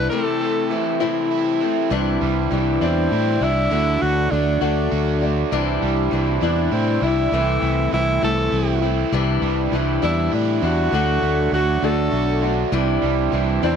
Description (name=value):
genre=folk rock and heartland rock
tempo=67 BPM (dotted quarters)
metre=6/8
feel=straight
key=unclear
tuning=A4 = 440 Hz
part: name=clear tenor saxophone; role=melody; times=0.0-13.8 s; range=C4 to A4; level=-23 LUFS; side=right 1 dB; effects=none
part: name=picked steel-string acoustic guitar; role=accompaniment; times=0.0-13.8 s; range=C3 to F#4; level=-22 LUFS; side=left 10 dB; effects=none
part: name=pedal harmonium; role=sustained chords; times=0.0-13.8 s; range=C3 to A4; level=-27 LUFS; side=right 12 dB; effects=none
part: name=overdriven semi-hollow guitar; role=riff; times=0.0-13.8 s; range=C3 to F#4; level=-26 LUFS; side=right 14 dB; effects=none
part: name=fingered electric bass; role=bass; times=0.0-13.8 s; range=B1 to A2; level=-22 LUFS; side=right 1 dB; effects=none
room=light reverb, studio reverb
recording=1960s-style stereo with parts hard left and right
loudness=-17 LUFS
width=side -7 dB against mid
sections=0.0-1.9 A section; 1.9-13.8 A section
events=none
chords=0.1 Am/C; 1.9 Cadd9; 3.7 D; 5.5 Cadd9; 7.3 Am/C; 9.1 Cadd9; 10.9 D; 12.7 Cadd9